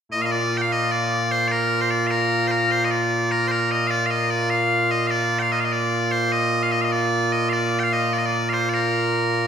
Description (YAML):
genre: scottish traditional, Scottish pipe music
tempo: 100 BPM (dotted quarters)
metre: 6/8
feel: straight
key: Bb major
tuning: A4 = 439 Hz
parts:
  - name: loud bright bagpipes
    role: solo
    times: 0.1-9.5 s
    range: Bb2 to G5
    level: -19 LUFS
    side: equal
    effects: none
room: wet recital hall reverb, RT60 1.8 s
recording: recorded in a church or concert hall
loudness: -19 LUFS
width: side -8 dB against mid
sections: 0.3-9.5 A section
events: none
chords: none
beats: | 0.32 0.92 | 1.52 2.12 | 2.72 3.32 | 3.92 4.52 | 5.12 5.72 | 6.32 6.92 | 7.52 8.12 | 8.72 9.32